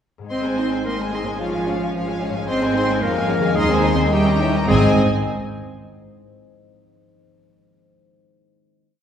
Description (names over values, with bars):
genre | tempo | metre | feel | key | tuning
cinematic, playful, whimsical film cue | 110 BPM | 2/4 | straight | Ab major | A4 = 439 Hz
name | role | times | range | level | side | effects
concert harp | arpeggios | 0.2-5.0 s | Ab2 to C5 | -26 LUFS | left 3 dB | none
rich studio violin section | melody | 0.3-5.0 s | F5 to C6 | -27 LUFS | left 1 dB | none
clear clarinet | second line | 0.3-4.9 s | F4 to C5 | -25 LUFS | left 1 dB | none
clear studio violin section | second line | 0.3-5.0 s | C5 to F5 | -31 LUFS | left 2 dB | none
rich studio viola section | accompaniment | 0.3-5.0 s | F3 to Eb4 | -26 LUFS | left 1 dB | none
rich studio double bass section | bass | 0.3-5.0 s | Ab1 to F2 | -24 LUFS | right 2 dB | none
rich symphonic cello section | bass | 0.3-5.0 s | F3 to C4 | -24 LUFS | right 3 dB | none
mellow French horn section | sustained chords | 0.6-4.9 s | Eb3 to Eb4 | -29 LUFS | left 2 dB | none
room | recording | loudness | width
wet scoring stage reverb, RT60 1.6 s | heard from further back in the room | -17 LUFS | side -8 dB against mid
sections
0.3-4.7 A section; 4.7-5.8 final chord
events
none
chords
0.3 Ab; 1.4 Db/Ab; 2.5 Ab; 3.0 Db/F; 3.6 Ab/Eb; 4.1 Eb7b9; 4.7 Ab